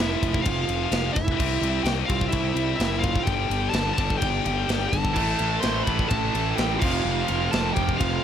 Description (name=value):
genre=heavy metal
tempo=127 BPM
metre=4/4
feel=straight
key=unclear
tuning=A4 = 441 Hz
part: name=high-gain lead guitar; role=melody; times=0.0-8.2 s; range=E5 to C6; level=-29 LUFS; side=equal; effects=distortion
part: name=bluesy overdriven lead guitar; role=second line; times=0.0-8.2 s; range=E4 to C5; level=-31 LUFS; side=right 5 dB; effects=distortion
part: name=heavy high-gain guitar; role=riff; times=0.0-8.2 s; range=F2 to C4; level=-29 LUFS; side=left 15 dB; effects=distortion
part: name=fuzz picked electric bass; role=bass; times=0.0-8.2 s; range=F1 to C2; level=-27 LUFS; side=equal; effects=overdrive
part: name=tight metal drum kit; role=drums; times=0.0-8.1 s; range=crash cymbal, kick drum, ride cymbal, snare drum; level=-27 LUFS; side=equal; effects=none
part: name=heavy high-gain guitar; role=riff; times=5.1-8.2 s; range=F2 to A3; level=-29 LUFS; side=right 14 dB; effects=distortion
room=little or no reverb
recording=none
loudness=-21 LUFS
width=side -9 dB against mid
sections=0.0-8.2 A section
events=none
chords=0.0 F5; 1.4 C; 3.3 G5; 5.2 A5; 6.8 F5